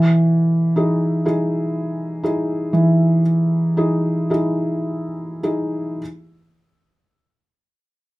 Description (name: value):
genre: folk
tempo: 34-42 BPM (dotted quarters)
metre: 6/8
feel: straight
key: E major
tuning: A4 = 440 Hz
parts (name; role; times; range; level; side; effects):
- felt-muted upright piano; melody; 0.0-6.0 s; E3 to G#4; -17 LUFS; equal; none
room: moderate small room reverb, RT60 0.5 s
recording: minimal, uncompressed stereo recording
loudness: -17 LUFS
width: side -19 dB against mid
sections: 0.0-6.0 A section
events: slowing down 0.0-6.0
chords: 0.0 Emaj7